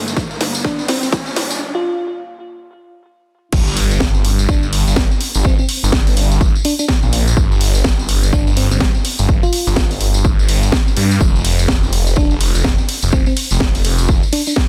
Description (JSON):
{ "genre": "bass house", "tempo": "125 BPM", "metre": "4/4", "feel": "swing 59% on 16ths", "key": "G minor", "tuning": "A4 = 440 Hz", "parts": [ { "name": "sweeping resonant pad", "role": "sustained chords", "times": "0.0-1.6 s", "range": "G2 to Bb3", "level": "-34 LUFS", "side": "equal", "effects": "chorus, sidechain pumping" }, { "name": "riser and impact", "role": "sound effects", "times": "0.0-5.4 s", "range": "none", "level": "-29 LUFS", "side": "equal", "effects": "none" }, { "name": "tambourine", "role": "percussion", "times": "0.1-14.7 s", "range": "none", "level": "-29 LUFS", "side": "equal", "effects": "none" }, { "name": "electronic kick drum", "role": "drums", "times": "0.2-14.7 s", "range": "none", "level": "-18 LUFS", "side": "equal", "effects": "overdrive" }, { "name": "house drum kit", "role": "drums", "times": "0.2-14.7 s", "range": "crash cymbal, hi-hat, ride cymbal, snare drum", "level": "-22 LUFS", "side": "equal", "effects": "overdrive, high-pass filter on snare, high-pass filter on hats, high-pass filter on cymbals, high-pass filter on room" }, { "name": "bell-like FM electric piano", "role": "melody", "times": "0.6-14.5 s", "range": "C4 to F4", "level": "-25 LUFS", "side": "equal", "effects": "chorus, tape echo" }, { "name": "phased detuned saw bass", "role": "bass", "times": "3.5-14.2 s", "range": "F1 to G2", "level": "-18 LUFS", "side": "equal", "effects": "phaser, tube saturation, sidechain pumping" } ], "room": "digital ambience", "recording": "dense, heavily limited modern master, high-pass filter", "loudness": "-15 LUFS", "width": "mono", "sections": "0.0-3.5 A section; 3.5-14.7 B section", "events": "build-up 0.0-3.5; drum fill 0.0-1.6; riser 0.0-1.6; filter sweep 0.0-3.5; break 1.6-3.5; drop 3.5-14.7; impact 3.5-5.4", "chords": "0.0 Gm; 3.5 N.C.", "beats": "0.17 0.65 1.13 | 1.61 2.09 2.57 3.05 | 3.53 4.01 4.49 4.97 | 5.45 5.93 6.41 6.89 | 7.37 7.85 8.33 8.81 | 9.29 9.77 10.25 10.73 | 11.21 11.69 12.17 12.65 | 13.13 13.61 14.09 14.57" }